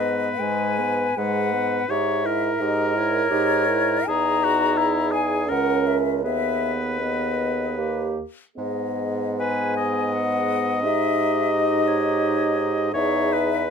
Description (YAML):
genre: classical, slow romantic movement for wind quintet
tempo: 70-87 BPM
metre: 3/4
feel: rubato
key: G# minor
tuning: A4 = 440 Hz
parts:
  - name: mellow silver concert flute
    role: melody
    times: 0.0-13.7 s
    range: C#5 to A#5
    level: -25 LUFS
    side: left 9 dB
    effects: none
  - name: clear oboe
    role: second line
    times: 0.0-13.7 s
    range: E4 to D#5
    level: -26 LUFS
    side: left 2 dB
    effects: none
  - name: clear French horn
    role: accompaniment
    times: 0.0-13.7 s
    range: G#3 to E4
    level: -28 LUFS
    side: right 1 dB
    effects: none
  - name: warm clarinet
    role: accompaniment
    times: 0.0-13.7 s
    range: G4 to B4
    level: -29 LUFS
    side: right 9 dB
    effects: none
  - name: clear bassoon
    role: bass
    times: 0.0-13.7 s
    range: C#2 to G#2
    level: -27 LUFS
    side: right 4 dB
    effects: none
room: light reverb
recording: none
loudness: -20 LUFS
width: side -6 dB against mid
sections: 0.0-13.7 A section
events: none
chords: 0.0 G#m; 1.9 D#7b9/G#; 4.1 Emaj7; 5.5 A#dim/C#; 6.2 G#m/D#; 7.8 D#; 8.6 G#m; 10.8 D#7b9/G#; 12.9 Emaj7